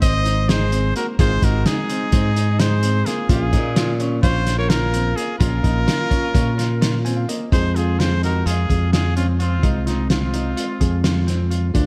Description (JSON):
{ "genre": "progressive instrumental, band music in an uneven meter", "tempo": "256 BPM (eighths)", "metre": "9/8", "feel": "straight", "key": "F minor", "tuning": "A4 = 441 Hz", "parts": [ { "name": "bright trumpet", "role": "melody", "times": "0.0-11.0 s", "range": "Eb4 to Eb5", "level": "-28 LUFS", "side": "equal", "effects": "none" }, { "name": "clear alto saxophone", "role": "second line", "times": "0.0-11.0 s", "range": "C4 to C5", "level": "-33 LUFS", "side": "equal", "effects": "slapback echo" }, { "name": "bell-like tine electric piano", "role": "accompaniment", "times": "0.0-11.9 s", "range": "Ab3 to Ab5", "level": "-30 LUFS", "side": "equal", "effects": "slapback echo" }, { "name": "clear concert grand piano", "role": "arpeggios", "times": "0.0-11.9 s", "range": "Bb3 to Ab4", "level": "-32 LUFS", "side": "equal", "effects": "slapback echo" }, { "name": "modern bright fingered electric bass", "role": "bass", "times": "0.0-11.9 s", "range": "Ab1 to Bb2", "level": "-22 LUFS", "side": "equal", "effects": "none" }, { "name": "cloth-damped thuddy drum kit", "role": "drums", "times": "0.0-11.9 s", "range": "hi-hat, kick drum, snare drum", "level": "-23 LUFS", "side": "equal", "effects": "none" } ], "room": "light reverb, small room reverb", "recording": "none", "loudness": "-19 LUFS", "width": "mono", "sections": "0.0-7.5 A section; 7.5-11.9 B section", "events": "tine electric piano fill 6.8-7.5", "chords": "0.0 Ab; 3.3 Bbm; 7.5 Fm" }